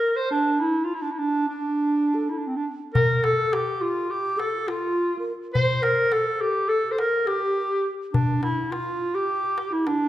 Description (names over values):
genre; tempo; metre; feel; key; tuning
Turkish makam ensemble; 208 BPM (eighths); 9/8; straight; D makam ussak; A4 = 440 Hz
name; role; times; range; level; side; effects
warm clarinet; melody; 0.0-10.1 s; C4 to C5; -23 LUFS; equal; none
mellow hollow alto flute; second line; 0.0-10.1 s; D4 to C5; -28 LUFS; right 2 dB; none
darbuka; percussion; 3.0-10.0 s; none; -25 LUFS; left 2 dB; none
room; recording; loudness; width
wet recital hall reverb, RT60 1.6 s; none; -22 LUFS; side -13 dB against mid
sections
0.0-10.1 A section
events
none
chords
none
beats
0.06 | 0.35 0.64 0.92 1.21 1.50 1.79 2.08 2.37 2.66 | 2.94 3.23 3.52 3.81 4.10 4.39 4.68 4.97 5.25 | 5.54 5.83 6.12 6.41 6.70 6.99 7.28 7.57 7.85 | 8.14 8.43 8.72 9.01 9.30 9.59 9.88